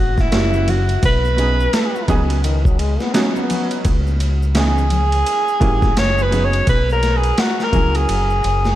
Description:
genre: hip hop, jazz-hop.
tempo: 85 BPM.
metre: 4/4.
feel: swing 60% on 16ths.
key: B major.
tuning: A4 = 440 Hz.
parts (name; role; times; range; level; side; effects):
breathy alto saxophone; melody; 0.0-8.8 s; E4 to C#5; -19 LUFS; equal; analog delay.
deep dub fingered electric bass; bass; 0.0-8.8 s; F#1 to C#2; -18 LUFS; equal; none.
boom bap sampler-style drum kit; drums; 0.2-8.7 s; hi-hat, kick drum, ride cymbal, snare drum; -20 LUFS; equal; none.
congas and maracas; percussion; 0.2-8.8 s; none; -31 LUFS; left 4 dB; none.
clear upright piano; accompaniment; 0.3-8.3 s; E3 to G#4; -24 LUFS; right 2 dB; none.
growling trombone; second line; 2.4-3.8 s; D#3 to C#4; -26 LUFS; left 4 dB; none.
room: moderate huge ambient reverb, RT60 4.3 s.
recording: dreamy mix soaked in reverb, vinyl crackle.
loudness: -14 LUFS.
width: side -14 dB against mid.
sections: 0.0-8.8 A section.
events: kick muted 8.1-8.8.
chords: 0.3 F#7b9; 1.0 B69; 3.9 C#m9; 6.0 F#5; 6.7 Bsus2; 8.1 F#9.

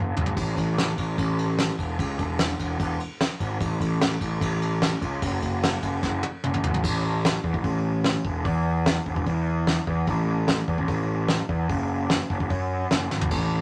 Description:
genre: indie rock.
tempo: 148 BPM.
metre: 4/4.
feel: straight.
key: A major.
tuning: A4 = 440 Hz.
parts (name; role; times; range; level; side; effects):
fuzz picked electric bass; bass; 0.0-13.6 s; E1 to F#2; -27 LUFS; equal; overdrive.
soft brush drum kit; drums; 0.2-13.4 s; crash cymbal, hi-hat, kick drum, ride cymbal, snare drum, toms; -29 LUFS; equal; none.
room: moderate club reverb, RT60 0.6 s.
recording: none.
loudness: -25 LUFS.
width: mono.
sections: 0.4-6.8 A section; 6.8-13.6 B section.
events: drum fill 0.0-0.4, 6.0-6.8, 13.1.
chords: none.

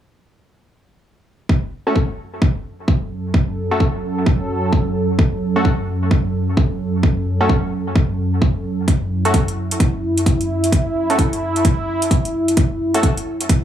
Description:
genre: bass house.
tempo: 130 BPM.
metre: 4/4.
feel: swing 62% on 16ths.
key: F# minor.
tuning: A4 = 440 Hz.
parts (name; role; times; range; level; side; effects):
sweeping resonant pad; sustained chords; 1.5-13.6 s; F#2 to A4; -20 LUFS; right 1 dB; chorus, sidechain pumping.
electronic kick drum; drums; 1.5-13.6 s; none; -16 LUFS; equal; none.
band-passed chord stab; stabs; 1.9-13.1 s; A3 to A4; -22 LUFS; equal; chorus, cassette tape, sidechain pumping, dub echo.
electronic hi-hat; drums; 8.9-13.6 s; none; -26 LUFS; right 2 dB; none.
room: light reverb, digital ambience.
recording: small room ambience.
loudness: -16 LUFS.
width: side -10 dB against mid.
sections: 1.5-13.6 A section.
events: filter sweep on analog synth pad 1.5-13.6.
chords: 1.5 F#m.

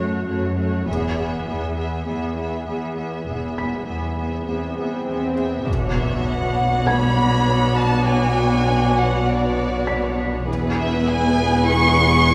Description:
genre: cinematic.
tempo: 100 BPM.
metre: 4/4.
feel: straight.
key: B dorian from 5.7 s.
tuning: A4 = 436 Hz.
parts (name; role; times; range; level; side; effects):
rich studio violin section; melody; 0.0-12.3 s; C#5 to C#6; -26 LUFS; equal; none.
warm studio viola section; accompaniment; 0.0-12.3 s; A3 to G#4; -28 LUFS; equal; none.
warm studio cello section; bass; 0.0-12.3 s; E2 to B2; -26 LUFS; equal; none.
felt-muted upright piano; texture; 0.0-12.3 s; B4 to C7; -34 LUFS; equal; none.
rich studio double bass section; bass; 0.9-12.3 s; E1 to B1; -27 LUFS; equal; none.
swell and impact; sound effects; 4.4-8.1 s; none; -30 LUFS; equal; none.
warm studio violin section; second line; 5.7-12.3 s; F#4 to C#5; -28 LUFS; equal; none.
room: wet scoring stage reverb, RT60 1.9 s.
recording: recorded in a church or concert hall.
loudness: -21 LUFS.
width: mono.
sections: 0.0-5.7 A section; 5.7-12.3 B section.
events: swell 4.4-5.7; impact 5.7-8.1.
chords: 0.0 F#m; 0.9 E; 5.7 Bmadd9; 10.5 E6.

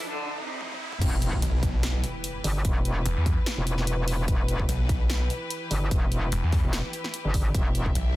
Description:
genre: heavy wobble dubstep.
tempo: 147 BPM.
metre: 4/4.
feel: swing 55% on 16ths, half-time.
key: E phrygian.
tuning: A4 = 440 Hz.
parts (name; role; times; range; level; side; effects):
bright cello; melody; 0.0-0.9 s; C3 to D3; -36 LUFS; right 1 dB; dub echo.
bright symphonic string section; sustained chords; 0.0-8.2 s; F2 to E5; -36 LUFS; left 2 dB; sidechain pumping.
riser and impact; sound effects; 0.0-2.6 s; none; -35 LUFS; equal; none.
big-room dance drum kit; drums; 0.6-8.0 s; crash cymbal, hi-hat, snare drum, toms; -34 LUFS; equal; studio reverb.
metallic wobble bass; bass; 1.0-7.9 s; E1 to G1; -26 LUFS; equal; chorus, overdrive.
electronic kick drum; drums; 1.0-7.9 s; none; -26 LUFS; equal; overdrive, studio reverb.
snarling distorted saw bass; bass; 1.4-8.2 s; E1 to E2; -25 LUFS; equal; distortion, overdrive.
room: digital ambience.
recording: dense, heavily limited modern master, high-pass filter.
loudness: -24 LUFS.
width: side -17 dB against mid.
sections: 0.0-1.0 A section; 1.0-8.2 B section.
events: build-up 0.0-1.0; riser 0.0-1.0; drum fill 0.6-1.0; drop 1.0-8.2; impact 1.0-2.6.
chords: 0.0 F; 1.0 Em.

